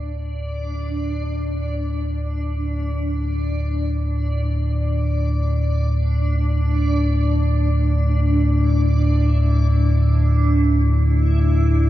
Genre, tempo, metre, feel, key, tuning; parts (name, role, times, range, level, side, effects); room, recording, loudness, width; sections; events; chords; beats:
dark ambient drone; free time; A4 = 439 Hz
deep rumbling drone; drone; 0.0-11.9 s; D2 to A2; -18 LUFS; equal; built-in reverb
backwards swelling texture; texture; 0.0-11.9 s; D4 to D5; -25 LUFS; equal; built-in reverb
wet cathedral reverb, RT60 5.2 s; worn, warbling old tape, cassette tape, warbly pitch drift, nothing above 7.6 kHz; -17 LUFS; side -14 dB against mid
0.0-11.9 A section
fade-in on synth drone 0.0-11.9; fade-in on synth texture 0.0-11.9
0.0 D5
free time